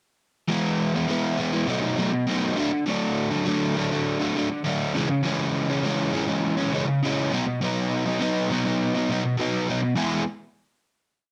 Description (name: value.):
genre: rock.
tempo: 101 BPM.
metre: 4/4.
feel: straight.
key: E major.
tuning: A4 = 441 Hz.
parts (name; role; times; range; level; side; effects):
crunchy overdriven guitar; solo; 0.5-10.2 s; B2 to G#4; -25 LUFS; equal; none.
room: moderate studio reverb, RT60 0.6 s.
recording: none.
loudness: -25 LUFS.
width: mono.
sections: 0.5-10.0 verse; 10.0-11.3 final chord.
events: none.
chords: 0.5 E; 1.7 B5; 2.6 D; 5.0 C#m; 7.3 B; 10.0 E.